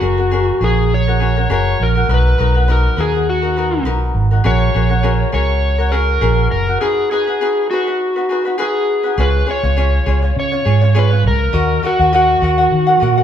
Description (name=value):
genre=acoustic pop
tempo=102 BPM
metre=4/4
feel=swing 55% on 16ths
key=F# major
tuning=A4 = 439 Hz
part: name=overdriven slide guitar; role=melody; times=0.0-13.2 s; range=F#4 to C#5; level=-18 LUFS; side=left 1 dB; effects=none
part: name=ukulele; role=accompaniment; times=0.0-13.2 s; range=C#4 to F#5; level=-19 LUFS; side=left 1 dB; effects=none
part: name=fingered electric bass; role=bass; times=0.0-13.2 s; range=F#1 to D#3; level=-15 LUFS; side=right 1 dB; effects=none
room=wet large studio reverb, RT60 1.2 s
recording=band playing live in one room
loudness=-13 LUFS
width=side -9 dB against mid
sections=0.0-9.2 A section; 9.2-13.2 B section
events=break 6.8-9.2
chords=0.0 F#add9; 2.1 Bmaj7; 4.4 F#add9/A#; 6.8 G#m7; 9.2 C#; 11.5 D#m